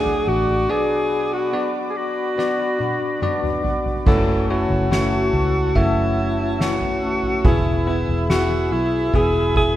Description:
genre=pop ballad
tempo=71 BPM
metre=4/4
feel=straight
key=F# minor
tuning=A4 = 445 Hz
part: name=warm alto saxophone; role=melody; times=0.0-9.7 s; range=E4 to A4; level=-22 LUFS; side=equal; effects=none
part: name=bell-like tine electric piano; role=accompaniment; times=0.0-9.8 s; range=B2 to E5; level=-24 LUFS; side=left 3 dB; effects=fast stereo tremolo
part: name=warm analog pad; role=sustained chords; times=0.0-9.8 s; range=F#4 to E6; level=-29 LUFS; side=equal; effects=wide subtle chorus
part: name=fingerpicked plugged-in steel-string acoustic guitar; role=arpeggios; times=0.0-9.8 s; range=F#2 to G#4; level=-31 LUFS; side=right 3 dB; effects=digital delay
part: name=vintage muted fingered electric bass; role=bass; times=0.0-9.8 s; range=E1 to D2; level=-23 LUFS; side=equal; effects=none
part: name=soft-mallet drum kit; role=drums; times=0.1-9.8 s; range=crash cymbal, kick drum, snare drum, toms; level=-24 LUFS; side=right 1 dB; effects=none
room=light reverb, studio reverb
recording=rough home demo mix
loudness=-17 LUFS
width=side -13 dB against mid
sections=0.0-4.1 A section; 4.1-9.8 B section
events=break 0.7-4.1; drum fill 2.4-4.1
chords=0.0 D; 0.7 Bm; 4.1 F#m7; 7.5 E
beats=| 0.69 1.53 2.38 3.23 | 4.07 4.92 5.76 6.61 | 7.45 8.30 9.14

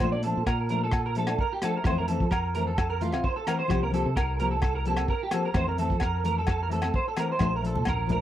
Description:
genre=highlife guitar band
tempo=130 BPM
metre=4/4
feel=straight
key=unclear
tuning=A4 = 440 Hz
part: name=nylon-string guitar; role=accompaniment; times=0.0-8.2 s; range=E3 to G4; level=-30 LUFS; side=left 4 dB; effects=none
part: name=electric guitar at the edge of break-up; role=arpeggios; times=0.0-8.2 s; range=F4 to D5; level=-29 LUFS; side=right 5 dB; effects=ensemble chorus, tape echo
part: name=fingered electric bass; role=bass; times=0.0-8.2 s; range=Bb1 to F3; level=-30 LUFS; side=equal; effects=none
part: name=crunchy breakbeat drum kit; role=drums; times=0.0-8.2 s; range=hi-hat, kick drum, rim click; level=-30 LUFS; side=equal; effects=none
part: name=agogo bells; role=percussion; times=0.0-8.0 s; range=none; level=-36 LUFS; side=left 7 dB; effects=none
part: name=congas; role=percussion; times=7.8-8.2 s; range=none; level=-33 LUFS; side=left 1 dB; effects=none
room=little or no reverb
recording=dry, close 1970s-style studio recording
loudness=-24 LUFS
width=side -12 dB against mid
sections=0.0-8.2 A section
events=none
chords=0.0 Bbmaj7; 1.9 Fmaj7; 3.7 C7sus4; 5.6 Fmaj7; 7.4 Bbmaj7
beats=| 0.01 0.47 0.94 1.40 | 1.86 2.32 2.78 3.24 | 3.71 4.17 4.63 5.09 | 5.55 6.02 6.48 6.94 | 7.41 7.87

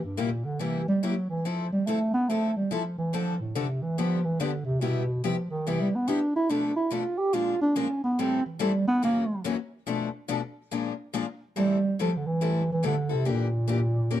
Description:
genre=jazz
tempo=142 BPM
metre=4/4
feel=swing 62% on 8ths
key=A minor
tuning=A4 = 440 Hz
part: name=dark bass clarinet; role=melody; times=0.0-14.2 s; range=G2 to G4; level=-25 LUFS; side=right 1 dB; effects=none
part: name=picked steel-string acoustic guitar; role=accompaniment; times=0.2-14.2 s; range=F#2 to Bb4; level=-30 LUFS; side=left 6 dB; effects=none
room=light reverb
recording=dark, warm production, lossy compression artefacts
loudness=-25 LUFS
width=side -12 dB against mid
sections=0.0-11.6 A section; 11.6-14.2 B section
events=bass clarinet solo 0.0-11.6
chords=0.0 C7; 1.4 Fmaj7; 3.1 Dm7; 4.0 G7; 4.8 Cmaj7; 6.5 Bm7b5; 7.3 Bb7; 8.2 Am7; 9.0 F#7; 9.9 Bm7b5; 10.7 Bb7; 11.6 Am7; 13.2 Em7b5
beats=0.17 0.60 1.02 | 1.44 1.86 2.28 2.70 | 3.12 3.54 3.96 4.38 | 4.80 5.23 5.65 6.07 | 6.49 6.91 7.33 7.75 | 8.17 8.59 9.02 9.44 | 9.86 10.28 10.70 11.13 | 11.55 11.97 12.40 12.82 | 13.25 13.67 14.10

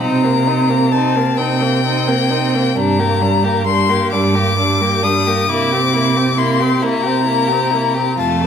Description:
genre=classical, slow romantic movement for string quartet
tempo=44 BPM (dotted quarters)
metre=6/8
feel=rubato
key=unclear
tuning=A4 = 436 Hz
part: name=rich violin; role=melody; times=0.0-8.5 s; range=G5 to Eb6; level=-18 LUFS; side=left 7 dB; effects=none
part: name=rich violin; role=second line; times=0.0-8.5 s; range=C4 to A4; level=-22 LUFS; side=left 3 dB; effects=none
part: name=rich viola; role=accompaniment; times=0.0-8.5 s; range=G3 to C4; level=-20 LUFS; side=right 2 dB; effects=none
part: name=warm cello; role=bass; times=0.0-8.5 s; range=F2 to C3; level=-18 LUFS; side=right 4 dB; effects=none
room=wet recital hall reverb, RT60 1.7 s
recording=none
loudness=-13 LUFS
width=side -7 dB against mid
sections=0.0-8.5 A section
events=none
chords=0.0 Cm7; 2.8 Gm; 5.5 C7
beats=| 0.02 1.39 | 2.77 4.12 | 5.48 6.82 | 8.19

